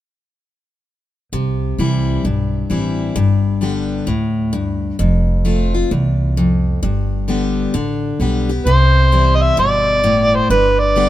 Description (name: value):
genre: country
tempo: 131 BPM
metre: 4/4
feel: swing 64% on 8ths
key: C major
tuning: A4 = 440 Hz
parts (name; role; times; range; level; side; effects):
- picked steel-string acoustic guitar; accompaniment; 1.3-11.1 s; E2 to G4; -18 LUFS; left 3 dB; none
- upright bass; bass; 1.3-11.1 s; F1 to D2; -18 LUFS; right 1 dB; none
- overdriven harmonica; melody; 8.7-11.1 s; B4 to E5; -13 LUFS; right 1 dB; none
room: light reverb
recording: minimal, uncompressed stereo recording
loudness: -14 LUFS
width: side -13 dB against mid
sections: 1.3-8.7 A section; 8.7-11.1 B section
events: none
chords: 1.3 C; 3.2 G; 5.0 F; 6.8 G; 8.7 C; 10.5 G